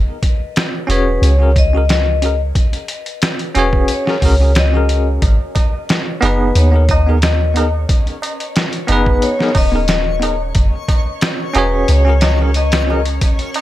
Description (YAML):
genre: trip hop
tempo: 90 BPM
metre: 4/4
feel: straight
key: unclear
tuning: A4 = 436 Hz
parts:
  - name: soft 808-style bass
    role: bass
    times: 0.0-13.2 s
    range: D#1 to D#2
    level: -14 LUFS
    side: equal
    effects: none
  - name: trip hop sampler-style drum kit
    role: drums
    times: 0.2-13.6 s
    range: hi-hat, kick drum, snare drum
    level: -16 LUFS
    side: equal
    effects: none
  - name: vibraphone with hard mallets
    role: melody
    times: 0.9-13.0 s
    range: B4 to D#5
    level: -22 LUFS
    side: left 4 dB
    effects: dub echo
  - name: bell-like tine electric piano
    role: accompaniment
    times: 0.9-13.0 s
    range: B3 to C#5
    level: -19 LUFS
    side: right 1 dB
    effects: medium stereo tremolo, tape echo
  - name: tabla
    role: percussion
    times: 5.2-13.6 s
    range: none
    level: -28 LUFS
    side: right 6 dB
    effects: none
  - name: backwards swelling texture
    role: texture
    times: 6.2-13.6 s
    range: C#4 to C#5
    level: -30 LUFS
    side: left 1 dB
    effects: built-in reverb
room: little or no reverb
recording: none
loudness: -12 LUFS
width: side -14 dB against mid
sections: 0.0-13.6 A section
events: none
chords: 0.0 F#add9; 5.2 G#m; 10.6 F#sus2